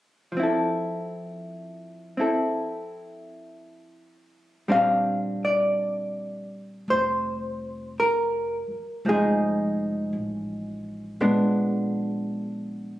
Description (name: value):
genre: jazz ballad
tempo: 55 BPM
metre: 4/4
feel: swing 66% on 8ths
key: F major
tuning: A4 = 440 Hz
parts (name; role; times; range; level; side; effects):
- hollow-body jazz guitar; accompaniment; 0.3-13.0 s; F3 to F5; -24 LUFS; equal; none
- upright bass; bass; 4.7-13.0 s; F1 to Bb1; -35 LUFS; equal; none
room: moderate studio reverb, RT60 0.8 s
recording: recorded on a phone in the room, club reverb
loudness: -23 LUFS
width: side -14 dB against mid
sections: 0.3-4.7 A section; 4.7-13.0 B section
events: none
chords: 0.3 Fmaj7; 4.7 Bb69; 9.1 Fm7; 11.2 Bb7b9